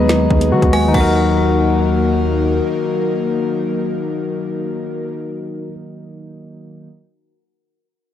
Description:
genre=hip hop, drill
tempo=free time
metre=none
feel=none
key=Eb minor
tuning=A4 = 440 Hz
part: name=metallic FM bell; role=second line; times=0.0-2.2 s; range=Gb5 to Bb5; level=-25 LUFS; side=right 2 dB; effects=chorus, tape echo
part: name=soft electric-piano-like synth keys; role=accompaniment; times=0.0-6.9 s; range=Eb3 to Eb4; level=-22 LUFS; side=right 2 dB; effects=chorus
part: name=airy breathy pad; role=sustained chords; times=0.0-5.1 s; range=Gb3 to Bb4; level=-24 LUFS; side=left 3 dB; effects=chorus
part: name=barky tine electric piano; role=arpeggios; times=0.0-5.7 s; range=Eb4 to Eb5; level=-20 LUFS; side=left 6 dB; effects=overdrive, tape echo
part: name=distorted 808-style bass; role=bass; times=0.0-2.6 s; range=Eb2 to Eb3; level=-19 LUFS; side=equal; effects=distortion
part: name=drill drum kit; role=drums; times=0.1-1.0 s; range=crash cymbal, hi-hat, kick drum, rim click, snare drum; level=-19 LUFS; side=equal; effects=none
room=light reverb, digital ambience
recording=dark, warm production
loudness=-15 LUFS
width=side -10 dB against mid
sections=0.9-4.3 A section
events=none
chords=0.0 Abm7/Eb; 0.9 Ebm

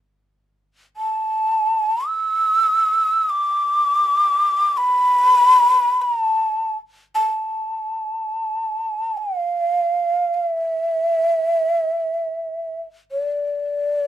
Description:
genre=japanese traditional, Japanese chamber music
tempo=free time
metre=none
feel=none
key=D kumoi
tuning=A4 = 439 Hz
part: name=breathy mellow shakuhachi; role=solo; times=1.0-14.1 s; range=D5 to E6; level=-17 LUFS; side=equal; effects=none
room=light reverb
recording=none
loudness=-17 LUFS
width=side -11 dB against mid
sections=0.0-14.1 A section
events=none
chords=none

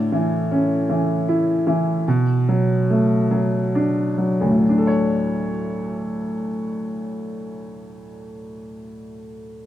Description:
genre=folk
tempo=43-53 BPM (dotted quarters)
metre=6/8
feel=straight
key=D major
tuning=A4 = 442 Hz
part: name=clear upright piano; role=accompaniment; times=0.0-9.7 s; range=D2 to C#5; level=-19 LUFS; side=equal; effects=none
room=light reverb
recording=none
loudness=-18 LUFS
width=side -12 dB against mid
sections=0.0-4.6 A section; 4.6-7.4 B section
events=slowing down 0.0-4.6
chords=0.0 A; 2.1 Bm7; 4.6 Dmaj7

